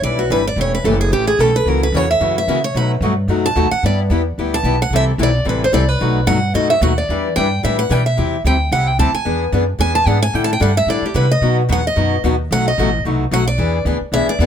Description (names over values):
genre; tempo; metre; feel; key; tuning
acoustic string swing (jazz manouche); 221 BPM; 4/4; swing 56% on 8ths; E minor; A4 = 439 Hz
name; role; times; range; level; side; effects
picked steel-string acoustic guitar; melody; 0.0-14.5 s; F#4 to A5; -18 LUFS; right 2 dB; plate reverb
picked steel-string acoustic guitar; accompaniment; 0.0-14.5 s; B2 to B4; -19 LUFS; left 4 dB; none
upright bass; bass; 0.0-14.5 s; E1 to C#3; -18 LUFS; right 1 dB; none
room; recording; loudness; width
light reverb; none; -14 LUFS; side -8 dB against mid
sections
0.0-8.2 A section; 8.2-14.5 A section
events
steel-string acoustic guitar solo 0.0-14.5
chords
0.0 Em7; 0.6 A13/E; 1.7 F#7; 2.7 B7; 3.8 G69; 4.9 C69; 6.0 B7; 7.1 Em7; 8.2 C; 9.3 E7; 10.3 A7sus4; 11.4 B; 12.5 B7; 13.6 E7